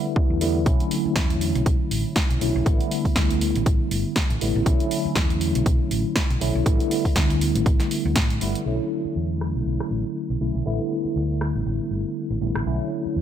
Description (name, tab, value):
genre	filtered disco house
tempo	120 BPM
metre	4/4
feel	swing 56% on 16ths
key	B minor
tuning	A4 = 440 Hz
part	mellow tine electric piano	accompaniment	0.0-13.2 s	D3 to E4	-25 LUFS	equal	medium stereo tremolo, phaser, sidechain pumping, low-pass filter
part	electronic kick drum	drums	0.2-8.3 s	none	-21 LUFS	equal	none
part	hollow-body short-scale fingered electric bass	bass	0.3-13.2 s	G1 to A2	-26 LUFS	equal	sidechain pumping, low-pass filter
part	punchy analog drum machine	drums	0.4-12.6 s	hi-hat, rim click, snare drum	-28 LUFS	right 1 dB	sidechain pumping on hats, low-pass filter on hats, low-pass filter on snare, low-pass filter on room
room	light reverb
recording	none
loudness	-20 LUFS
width	side -10 dB against mid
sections	0.0-8.7 A section; 8.7-13.2 B section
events	filter sweep 8.7-13.2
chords	0.0 A9sus4; 0.7 Bm11; 2.7 A9sus4; 4.7 Bm11; 6.7 A9sus4; 8.7 Bm11; 10.7 A9sus4; 12.7 Bm11